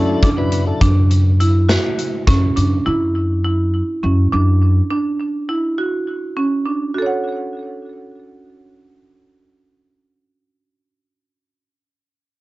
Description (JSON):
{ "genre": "progressive instrumental, band music in an uneven meter", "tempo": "206 BPM (eighths)", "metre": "7/8", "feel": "straight", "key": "F# minor", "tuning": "A4 = 440 Hz", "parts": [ { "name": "mellow tonewheel organ", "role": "accompaniment", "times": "0.0-0.8 s", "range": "F#3 to B4", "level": "-20 LUFS", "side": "left 3 dB", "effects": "slow rotary speaker" }, { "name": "marimba with hard mallets", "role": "arpeggios", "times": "0.0-10.4 s", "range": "C#4 to F#5", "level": "-20 LUFS", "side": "right 2 dB", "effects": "tape echo" }, { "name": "upright bass", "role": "bass", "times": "0.0-4.8 s", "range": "F#2", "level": "-15 LUFS", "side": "equal", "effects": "none" }, { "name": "big rock drum kit", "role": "drums", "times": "0.2-2.7 s", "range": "hi-hat, kick drum, snare drum", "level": "-20 LUFS", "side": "equal", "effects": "none" } ], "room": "light reverb", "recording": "worn, warbling old tape, cassette tape, warbly pitch drift, nothing above 7.8 kHz", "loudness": "-15 LUFS", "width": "side -19 dB against mid", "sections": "0.0-6.9 A section; 6.9-11.0 B section", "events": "none", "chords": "0.0 Dadd9/F#; 6.9 F#m" }